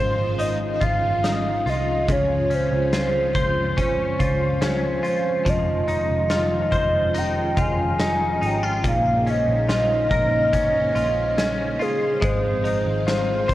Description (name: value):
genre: dream pop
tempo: 71 BPM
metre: 4/4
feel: straight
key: F minor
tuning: A4 = 440 Hz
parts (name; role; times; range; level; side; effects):
- hollow clarinet-like synth lead; melody; 0.0-13.5 s; Ab4 to Ab5; -23 LUFS; equal; chorus, tape echo
- string machine, violins; sustained chords; 0.0-13.5 s; Db3 to C5; -28 LUFS; equal; ensemble chorus
- direct-recorded clean electric guitar; arpeggios; 0.0-13.5 s; Bb2 to C5; -27 LUFS; left 1 dB; ensemble chorus, tape echo
- vintage muted picked electric bass; bass; 0.0-13.5 s; F1 to Db2; -26 LUFS; equal; none
- oversized low-tuned drum kit; drums; 0.4-13.5 s; hi-hat, kick drum, snare drum; -27 LUFS; equal; none
room: light reverb, small room reverb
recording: worn, warbling old tape, cassette tape, warbly pitch drift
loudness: -19 LUFS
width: side -15 dB against mid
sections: 0.0-13.5 A section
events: none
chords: 0.0 Ab6; 2.1 Dbmaj7; 5.5 Fm7; 8.8 Bbm11; 12.2 Ab6